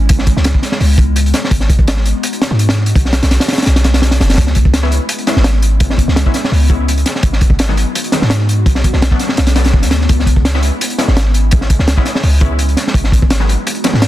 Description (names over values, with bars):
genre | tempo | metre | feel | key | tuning
drum and bass, jungle | 168 BPM | 4/4 | straight | C# minor | A4 = 440 Hz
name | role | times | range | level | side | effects
warbly tape-like pad | sustained chords | 0.0-14.1 s | G#3 to F#4 | -22 LUFS | left 2 dB | chorus, built-in reverb, phaser
warm 808-style bass | bass | 0.0-14.1 s | F#1 to G#2 | -13 LUFS | equal | none
crunchy breakbeat drum kit | drums | 0.1-14.1 s | hi-hat, kick drum, snare drum | -13 LUFS | equal | none
orchestra-hit-like synth stab | stabs | 4.8-13.9 s | D#3 to E4 | -22 LUFS | left 2 dB | built-in reverb, dub echo
room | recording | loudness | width
little or no reverb | dense, heavily limited modern master | -10 LUFS | side -14 dB against mid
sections
0.0-14.1 A section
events
none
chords
0.0 C#m7; 1.5 G#m7; 2.9 Bm7; 4.4 C#m7; 7.2 G#m7; 8.7 Bm7; 10.1 C#m7; 12.9 G#m7